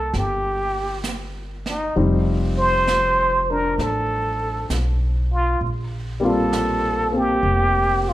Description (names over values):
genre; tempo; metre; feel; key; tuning
jazz ballad; 66 BPM; 4/4; swing 66% on 8ths; Bb major; A4 = 439 Hz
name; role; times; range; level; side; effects
trumpet with plunger mute; melody; 0.0-8.1 s; Eb4 to C5; -21 LUFS; right 1 dB; none
warm grand piano; accompaniment; 0.0-8.1 s; F3 to D5; -24 LUFS; left 2 dB; none
upright bass; bass; 0.0-8.1 s; F1 to Cb2; -24 LUFS; equal; none
jazz brush drum kit; drums; 0.1-8.1 s; brushed snare drum, hi-hat, snare drum; -33 LUFS; right 3 dB; none
room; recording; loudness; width
moderate recital hall reverb, RT60 1.4 s; recorded in a church or concert hall; -18 LUFS; side -14 dB against mid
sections
0.0-8.1 A section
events
none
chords
0.0 Cm11 (rootless); 2.0 F9; 5.6 Bb69